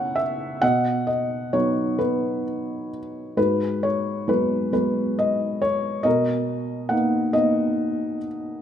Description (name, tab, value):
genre	classical, lyrical solo piano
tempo	44-47 BPM (dotted quarters)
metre	6/8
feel	rubato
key	unclear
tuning	A4 = 440 Hz
part	felt-muted upright piano	solo	0.0-8.6 s	G#2 to F#5	-21 LUFS	equal	none
room	moderate recital hall reverb, RT60 1.7 s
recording	minimal, uncompressed stereo recording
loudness	-21 LUFS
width	side -9 dB against mid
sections	0.0-8.6 A section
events	none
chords	0.0 C#m7; 0.6 B; 3.4 G#m7; 6.1 Bmaj7